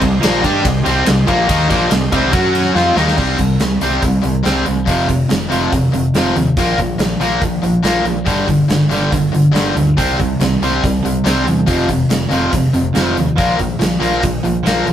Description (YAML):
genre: hard rock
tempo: 141 BPM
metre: 4/4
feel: straight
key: C minor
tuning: A4 = 440 Hz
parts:
  - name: overdriven tonewheel organ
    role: sustained chords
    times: 0.0-3.2 s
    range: F#4 to C6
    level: -26 LUFS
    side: right 1 dB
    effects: chorus vibrato
  - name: crunchy overdriven guitar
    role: riff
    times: 0.0-14.9 s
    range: F2 to G4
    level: -17 LUFS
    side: right 3 dB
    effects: none
  - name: distorted electric guitar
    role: riff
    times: 0.0-14.9 s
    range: F2 to G4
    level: -18 LUFS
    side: left 5 dB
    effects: overdrive
  - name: tight distorted guitar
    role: riff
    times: 0.0-3.2 s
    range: Bb2 to G4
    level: -25 LUFS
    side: equal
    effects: none
  - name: fingered electric bass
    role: bass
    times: 0.0-14.9 s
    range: F1 to G2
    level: -21 LUFS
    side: equal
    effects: none
  - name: gated 80s drum kit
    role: drums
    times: 0.0-14.9 s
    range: crash cymbal, hi-hat, kick drum, ride cymbal, snare drum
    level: -19 LUFS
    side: equal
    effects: none
room: moderate studio reverb, RT60 0.6 s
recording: rough rehearsal-room recording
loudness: -12 LUFS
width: side -10 dB against mid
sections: 0.0-3.2 A section; 3.2-14.9 B section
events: drum fill 2.8-3.2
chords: 0.0 Cm; 2.3 F#5; 2.8 Cm; 3.2 C5; 4.9 F5; 6.6 Bb5; 8.3 G5; 10.0 C5; 11.7 F5; 13.4 Bb5